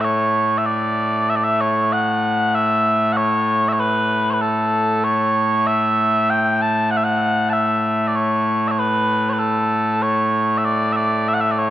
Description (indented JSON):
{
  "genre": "scottish traditional, Scottish pipe music",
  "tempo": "96 BPM",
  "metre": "4/4",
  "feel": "straight",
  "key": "A major",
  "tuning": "A4 = 440 Hz",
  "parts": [
    { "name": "mellow small bagpipes", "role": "solo", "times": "0.0-11.7 s", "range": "A2 to A5", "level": "-16 LUFS", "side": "equal", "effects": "none" }
  ],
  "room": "moderate concert hall reverb, RT60 1.8 s",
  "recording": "none",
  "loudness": "-16 LUFS",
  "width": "side -13 dB against mid",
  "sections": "0.0-6.9 A section; 6.9-11.7 A section",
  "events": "none",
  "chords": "none"
}